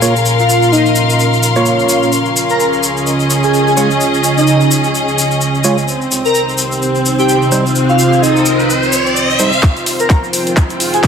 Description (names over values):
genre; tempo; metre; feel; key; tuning
bass house; 128 BPM; 4/4; swing 58% on 16ths; F minor; A4 = 440 Hz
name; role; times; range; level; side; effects
dark analog pad; sustained chords; 0.0-11.1 s; Bb2 to Ab4; -16 LUFS; right 1 dB; chorus, phaser, sidechain pumping
percussive organ stab; stabs; 0.0-9.5 s; G3 to Db5; -17 LUFS; right 3 dB; chorus, sidechain pumping, tape echo
tube shaker; percussion; 0.0-11.1 s; none; -20 LUFS; left 2 dB; none
rich studio string section; texture; 0.0-11.1 s; C4 to C6; -17 LUFS; left 2 dB; sidechain pumping
airy dreamy lead; melody; 0.4-11.1 s; Eb4 to Bb4; -16 LUFS; equal; chorus, cassette tape, tape echo
riser; sound effects; 6.9-11.1 s; none; -18 LUFS; right 1 dB; none
big-room dance drum kit; drums; 9.6-11.1 s; handclaps, hi-hat; -19 LUFS; equal; small room ambience
electronic kick drum; drums; 9.6-11.1 s; none; -10 LUFS; equal; small room ambience
room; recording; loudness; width
moderate digital room reverb, RT60 1.4 s; none; -10 LUFS; side -7 dB against mid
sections
0.0-9.6 A section; 9.6-11.1 B section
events
filter sweep on synth stab 0.0-9.6; riser 6.9-9.6, 9.6-11.1; build-up 9.6-11.1; drum fill 9.6-11.1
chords
0.0 Bbm; 2.1 Db; 5.9 Cm; 9.6 Fm7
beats
| 0.25 0.72 1.19 1.66 | 2.13 2.60 3.07 3.54 | 4.00 4.47 4.94 5.41 | 5.88 6.35 6.82 7.29 | 7.75 8.22 8.69 9.16 | 9.63 10.10 10.57 11.04